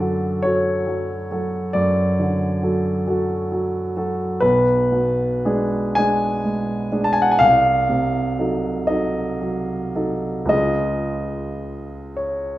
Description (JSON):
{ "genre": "classical, romantic nocturne for solo piano", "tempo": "35-46 BPM (dotted quarters)", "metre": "12/8", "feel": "rubato", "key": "unclear", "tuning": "A4 = 439 Hz", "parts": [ { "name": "warm grand piano", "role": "solo", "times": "0.0-12.6 s", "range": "B1 to A5", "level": "-18 LUFS", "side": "equal", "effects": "none" } ], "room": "wet recital hall reverb, RT60 1.3 s", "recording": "dark, warm production", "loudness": "-18 LUFS", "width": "side -15 dB against mid", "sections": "0.0-12.6 A section", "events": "none", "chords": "0.0 D/F#; 4.4 G#dim/B; 7.4 Cdim7; 10.5 C#", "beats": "0.43 1.74 3.07 | 4.43 5.97 7.42 8.90 | 10.52 12.20" }